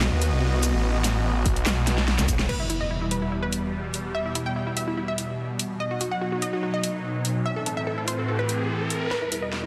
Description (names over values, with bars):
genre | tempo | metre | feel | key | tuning
heavy wobble dubstep | 145 BPM | 4/4 | half-time | E harmonic minor | A4 = 436 Hz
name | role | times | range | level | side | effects
supersaw pad | sustained chords | 0.0-9.7 s | E2 to D#5 | -31 LUFS | equal | phaser, sidechain pumping, low-pass filter
metallic wobble bass | bass | 0.0-2.5 s | B1 to C2 | -26 LUFS | equal | chorus, overdrive
dubstep drum kit | drums | 0.0-9.6 s | crash cymbal, handclaps, hi-hat, shaker, snare drum | -30 LUFS | equal | high-pass filter on hats, high-pass filter on snare, high-pass filter on perc, high-pass filter on cymbals
snarling distorted saw bass | bass | 0.1-2.2 s | A1 to D#2 | -25 LUFS | equal | distortion, overdrive
electronic kick drum | drums | 1.5-2.4 s | none | -28 LUFS | equal | none
unison pluck | melody | 2.5-9.7 s | E4 to G5 | -32 LUFS | equal | tape echo
impact and riser | sound effects | 2.5-9.7 s | none | -35 LUFS | equal | none
room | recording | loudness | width
moderate lush hall reverb, RT60 2.0 s | dense, heavily limited modern master | -26 LUFS | mono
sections
0.0-2.5 A section; 2.5-9.1 B section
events
drop 0.0-2.5; drum fill 1.9-2.5, 9.1-9.7; impact 2.5-4.1; riser 6.9-9.1, 9.1-9.7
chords
0.0 B; 2.5 Em; 5.8 B; 7.5 Am; 9.1 Em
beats
0.01 0.42 | 0.84 1.25 1.66 2.08 | 2.49 2.90 3.32 3.73 | 4.15 4.56 4.97 5.39 | 5.80 6.21 6.63 7.04 | 7.46 7.87 8.28 8.70 | 9.11 9.53